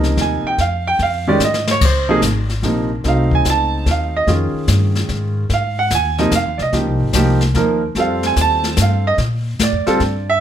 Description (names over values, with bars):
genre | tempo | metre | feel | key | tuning
jazz piano trio | 147 BPM | 3/4 | swing 67% on 8ths | F minor | A4 = 438 Hz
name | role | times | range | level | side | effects
warm grand piano | melody | 0.0-10.4 s | C3 to A5 | -17 LUFS | right 2 dB | none
upright bass | bass | 0.0-10.4 s | Ab1 to Bb2 | -19 LUFS | equal | none
jazz brush drum kit | drums | 0.0-10.4 s | brushed snare drum, crash cymbal, hi-hat, kick drum, snare drum | -21 LUFS | left 2 dB | none
room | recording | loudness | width
moderate club reverb, RT60 0.8 s | none | -14 LUFS | side -10 dB against mid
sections
0.0-1.8 A section; 1.8-10.4 A section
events
grand piano solo 0.0-10.4; drum fill 1.4-1.8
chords
0.0 Fm11; 1.8 Db6; 3.0 F7b9b13/C; 4.3 Dbadd9/F; 5.5 Ab5; 6.7 Dbmaj9#11 (rootless); 8.0 F9; 9.2 Bbmaj7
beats
0.18 | 0.59 1.00 1.41 | 1.82 2.23 2.64 | 3.05 3.46 3.86 | 4.27 4.68 5.09 | 5.50 5.91 6.32 | 6.73 7.14 7.55 | 7.96 8.37 8.78 | 9.19 9.60 10.01